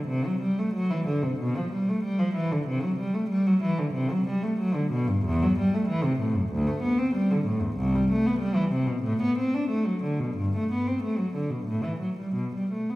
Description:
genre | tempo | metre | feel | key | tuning
classical, baroque-style suite movement for unaccompanied cello | 94 BPM | 4/4 | rubato | unclear | A4 = 440 Hz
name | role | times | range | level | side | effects
dark cello | solo | 0.0-13.0 s | C2 to D4 | -24 LUFS | equal | none
room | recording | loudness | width
wet recital hall reverb, RT60 1.6 s | recorded in a church or concert hall | -24 LUFS | side -18 dB against mid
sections
0.0-13.0 A section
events
none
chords
none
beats
| 0.08 0.74 1.38 2.02 | 2.66 3.30 3.94 4.58 | 5.24 5.89 6.52 7.14 | 7.77 8.40 9.03 9.67 | 10.34 10.99 11.63 12.32

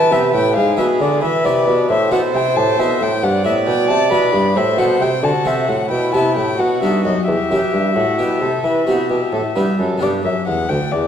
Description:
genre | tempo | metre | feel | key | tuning
classical, baroque-style sonata movement with continuo | 89 BPM (dotted quarters) | 12/8 | straight | E minor | A4 = 437 Hz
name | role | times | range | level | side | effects
warm violin | melody | 0.0-11.1 s | D5 to B5 | -20 LUFS | left 6 dB | none
warm violin | second line | 0.0-10.0 s | E4 to D5 | -20 LUFS | right 4 dB | none
harpsichord | accompaniment | 0.0-11.1 s | D2 to B4 | -20 LUFS | left 1 dB | none
mellow bassoon | bass | 0.0-11.1 s | D2 to E3 | -19 LUFS | right 1 dB | none
room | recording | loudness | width
wet concert hall reverb, RT60 2.4 s | dark, warm production | -14 LUFS | side -8 dB against mid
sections
0.0-10.0 A section; 10.0-11.1 A section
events
none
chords
0.0 Em; 0.6 E7/G#; 1.9 Am; 3.2 Em/G; 4.6 F#dim/A; 5.9 Em/B; 6.6 B7; 7.3 Em; 10.0 G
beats
0.56 1.23 | 1.89 2.56 3.23 3.90 | 4.56 5.23 5.91 6.58 | 7.27 7.96 8.64 9.33 | 10.02 10.69

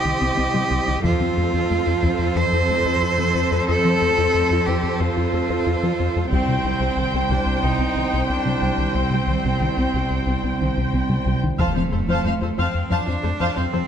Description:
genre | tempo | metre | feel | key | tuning
cinematic, hybrid orchestral and electronic film score | 91 BPM | 4/4 | straight | unclear | A4 = 438 Hz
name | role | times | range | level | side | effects
rich cello | melody | 0.0-13.9 s | A3 to C5 | -24 LUFS | right 2 dB | tape echo
warm symphonic viola section | accompaniment | 0.0-13.8 s | A4 to G5 | -25 LUFS | left 1 dB | none
round analog bass | riff | 0.0-13.8 s | C2 to F3 | -25 LUFS | left 2 dB | none
rich chamber cello section | bass | 0.0-13.8 s | C2 to F2 | -25 LUFS | right 3 dB | none
resonant blip pluck | arpeggios | 0.1-13.8 s | C3 to F4 | -28 LUFS | equal | phaser, tape echo
taiko ensemble | drums | 1.0-2.3, 6.3-7.6, 11.6-12.9 s | none | -28 LUFS | left 1 dB | none
warm symphonic violin section | melody | 11.6-13.8 s | C5 to A5 | -31 LUFS | left 8 dB | none
impact | sound effects | 11.6-13.9 s | none | -30 LUFS | equal | none
room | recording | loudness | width
moderate scoring stage reverb, RT60 1.5 s | none | -18 LUFS | side -8 dB against mid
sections
0.0-11.6 A section; 11.6-13.9 A section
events
impact 11.6-13.9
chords
0.0 Cm; 1.0 F; 6.3 Cm; 11.6 F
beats
0.39 | 1.05 1.71 2.37 3.02 | 3.68 4.34 5.00 5.66 | 6.32 6.98 7.64 8.30 | 8.96 9.62 10.28 10.94 | 11.60 12.26 12.91 13.57

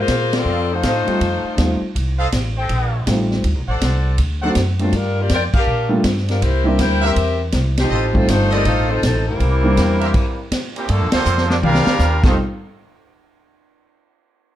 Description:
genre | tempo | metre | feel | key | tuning
jazz, big band swing | 161 BPM | 4/4 | swing 64% on 8ths | F mixolydian | A4 = 441 Hz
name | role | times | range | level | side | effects
warm saxophone section | melody | 0.0-1.8, 4.8-10.5 s | F3 to G5 | -20 LUFS | left 2 dB | plate reverb
upright bass | bass | 0.0-12.4 s | F1 to Bb2 | -19 LUFS | equal | none
swinging big-band drum kit | drums | 0.1-12.3 s | crash cymbal, hi-hat, kick drum, ride cymbal, snare drum, toms | -21 LUFS | equal | none
bright trumpet section | stabs | 0.5-10.1 s | F4 to G5 | -25 LUFS | right 1 dB | none
warm baby grand piano | accompaniment | 1.1-12.4 s | F#3 to A4 | -20 LUFS | equal | none
muted trombone section | second line | 9.3-12.4 s | F2 to F4 | -25 LUFS | right 2 dB | none
brilliant trumpet section | melody | 10.8-12.4 s | Bb3 to F5 | -20 LUFS | right 2 dB | plate reverb
room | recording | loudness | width
moderate large studio reverb, RT60 0.8 s | dark, warm production | -15 LUFS | side -12 dB against mid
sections
0.0-10.9 A section; 10.9-12.4 B section; 12.4-13.8 C section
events
band accent 0.3, 5.5, 7.7, 11.1; stop 10.1-10.9; drum fill 11.3-12.0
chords
0.5 F7; 3.4 D7; 4.9 Gm7; 6.4 C7; 7.9 F7; 9.4 C7; 10.9 Gm9; 11.6 C9sus4; 12.2 F9; 12.4 N.C.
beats
0.08 | 0.45 0.83 1.20 1.57 | 1.95 2.32 2.69 3.06 | 3.44 3.81 4.18 4.55 | 4.93 5.30 5.67 6.04 | 6.42 6.79 7.16 7.54 | 7.91 8.28 8.65 9.02 | 9.40 9.77 10.14 10.51 | 10.88 11.25 11.62 11.99 | 12.36

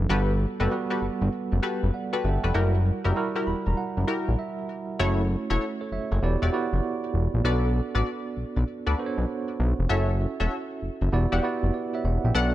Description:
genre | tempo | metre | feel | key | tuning
R&B | 98 BPM | 4/4 | swing 65% on 16ths | unclear | A4 = 436 Hz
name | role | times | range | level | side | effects
tine electric piano | accompaniment | 0.0-12.5 s | E3 to B5 | -29 LUFS | right 4 dB | medium tremolo
fat analog bass | bass | 0.0-12.5 s | E1 to D2 | -23 LUFS | equal | none
funky polysynth comp | stabs | 0.1-12.5 s | E4 to F#5 | -30 LUFS | left 3 dB | chorus
room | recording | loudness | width
digital ambience | dark, warm production | -24 LUFS | side -14 dB against mid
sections
0.0-5.0 A section; 5.0-12.5 B section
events
tine electric piano fill 3.2-5.0; break 4.4-5.0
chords
0.1 Gmaj9; 2.5 F#7b9; 5.0 F#m7; 6.2 Em9; 7.4 Bm7; 9.9 F#m7; 11.1 Em9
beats
| 0.10 0.71 1.32 1.94 | 2.55 3.16 3.77 4.38 | 5.00 5.61 6.22 6.83 | 7.45 8.06 8.67 9.28 | 9.89 10.51 11.12 11.73 | 12.34

